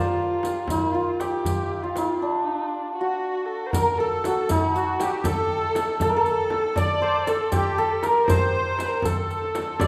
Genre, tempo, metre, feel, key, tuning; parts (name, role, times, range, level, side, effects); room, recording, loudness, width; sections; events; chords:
Persian modal ensemble; 79 BPM (dotted quarters); 6/8; straight; D dastgah shur; A4 = 442 Hz
santur; melody; 0.0-9.9 s; D4 to D5; -27 LUFS; equal
warm kamancheh; second line; 0.0-9.9 s; D4 to D5; -30 LUFS; equal
frame drum; percussion; 0.4-9.9 s; -34 LUFS; equal
riq; percussion; 0.4-9.9 s; -39 LUFS; equal
tombak; percussion; 0.4-9.9 s; -32 LUFS; equal
accordion; second line; 3.0-9.9 s; Eb4+45c to D5; -32 LUFS; equal; light tremolo tuning
wet recital hall reverb, RT60 1.4 s; -24 LUFS; mono
0.0-3.7 A section; 3.7-9.9 B section
break 2.2-3.7; drum fill 9.3-9.8